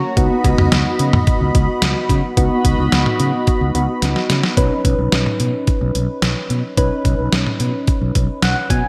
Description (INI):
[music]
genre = synth-pop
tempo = 109 BPM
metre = 4/4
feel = straight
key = unclear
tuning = A4 = 439 Hz
[part]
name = soft electric-piano-like synth keys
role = accompaniment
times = 0.0-8.9 s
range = A#3 to G#5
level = -23 LUFS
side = equal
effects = chorus, phaser
[part]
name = brassy analog pad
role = sustained chords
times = 0.0-4.6 s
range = F#4 to B5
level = -25 LUFS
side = equal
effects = chorus
[part]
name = mellow fretless electric bass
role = bass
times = 0.2-8.8 s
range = B1 to C#3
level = -21 LUFS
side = equal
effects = none
[part]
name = detuned 8-bit digital drum machine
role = drums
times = 0.2-8.8 s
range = cowbell, hi-hat, kick drum, snare drum, toms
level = -20 LUFS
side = equal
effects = gated reverb
[sound]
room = moderate plate reverb, RT60 2.4 s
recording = bright 1980s-style digital production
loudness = -17 LUFS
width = mono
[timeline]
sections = 0.0-2.4 A section; 2.4-4.6 B section; 4.6-8.9 C section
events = drum fill 4.0-4.6; synth keys fill 8.2-8.9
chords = 0.2 B/C#; 4.6 Badd9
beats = | 0.17 0.72 1.27 1.82 | 2.37 2.92 3.47 4.02 | 4.57 5.12 5.67 6.22 | 6.78 7.33 7.88 8.43